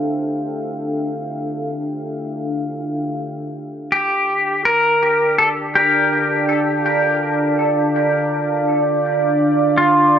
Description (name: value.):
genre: ambient.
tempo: free time.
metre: none.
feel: none.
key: unclear.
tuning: A4 = 442 Hz.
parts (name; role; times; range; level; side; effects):
deep dark ambient pad; sustained chords; 0.0-10.2 s; D4 to A5; -19 LUFS; right 1 dB; chorus, built-in reverb.
clean lap steel guitar; melody; 3.9-10.2 s; F4 to Bb4; -16 LUFS; left 1 dB; dub echo.
room: wet spring reverb, RT60 1.4 s.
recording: none.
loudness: -16 LUFS.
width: side -8 dB against mid.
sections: 0.0-10.2 A section.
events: fade-in on ambient pad 0.0-10.2.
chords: 0.0 Dm11; 3.2 G7(no3)/D.